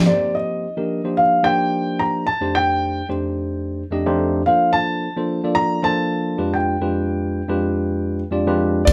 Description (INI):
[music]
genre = electric jazz fusion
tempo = 109 BPM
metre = 4/4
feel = swing 56% on 16ths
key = unclear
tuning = A4 = 440 Hz
[part]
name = tine electric piano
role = accompaniment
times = 0.0-8.9 s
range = F2 to Eb5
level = -23 LUFS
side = equal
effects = none
[part]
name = upright bass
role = bass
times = 0.0, 8.9 s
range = F2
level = -19 LUFS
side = equal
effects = none
[part]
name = dark grand piano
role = melody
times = 0.1-8.9 s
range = D5 to Bb5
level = -22 LUFS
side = equal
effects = none
[part]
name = crisp fusion drum kit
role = drums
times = 8.9 s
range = hi-hat, kick drum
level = -21 LUFS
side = equal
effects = none
[part]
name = congas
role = percussion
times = 8.9 s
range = none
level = barely audible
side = none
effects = none
[sound]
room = moderate studio ambience, RT60 0.5 s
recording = band playing live in one room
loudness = -20 LUFS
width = mono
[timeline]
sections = 0.1-8.9 A section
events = none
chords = 0.1 Cm9/F; 2.3 F13; 4.5 Bbmaj7/F; 6.4 G7b9/F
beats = | 0.06 0.61 1.17 1.72 | 2.27 2.82 3.37 3.92 | 4.47 5.02 5.57 6.12 | 6.67 7.22 7.77 8.32 | 8.87